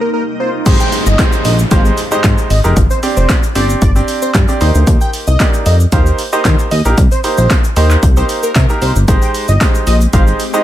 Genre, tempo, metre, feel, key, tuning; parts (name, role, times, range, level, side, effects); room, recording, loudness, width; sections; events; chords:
dance-pop; 114 BPM; 4/4; straight; A4 = 440 Hz
wide unison lead; melody; 0.0-10.6 s; Bb4 to G5; -20 LUFS; equal
clear concert grand piano; accompaniment; 0.0-10.6 s; Ab3 to D5; -18 LUFS; right 2 dB; sidechain pumping
shimmering ambient pad; sustained chords; 0.0-0.6, 10.0-10.6 s; C3 to G4; -24 LUFS; equal; chorus, built-in reverb, sidechain pumping
chorused synth bass; bass; 0.7-10.3 s; F1 to Eb3; -12 LUFS; equal; sidechain pumping
punchy analog drum machine; drums; 0.7-10.6 s; crash cymbal, handclaps, hi-hat, kick drum, shaker, snare drum; -13 LUFS; equal
tube shaker; percussion; 0.7-10.6 s; -33 LUFS; left 9 dB
downlifter; sound effects; 0.7-4.9 s; -24 LUFS; equal
little or no reverb; -9 LUFS; side -13 dB against mid
0.7-10.6 A section
drop 0.7-10.6
0.0 Cm7; 0.7 Abmaj7; 2.8 Gsus4; 4.6 Eb6; 7.0 Cm7; 9.1 Abmaj7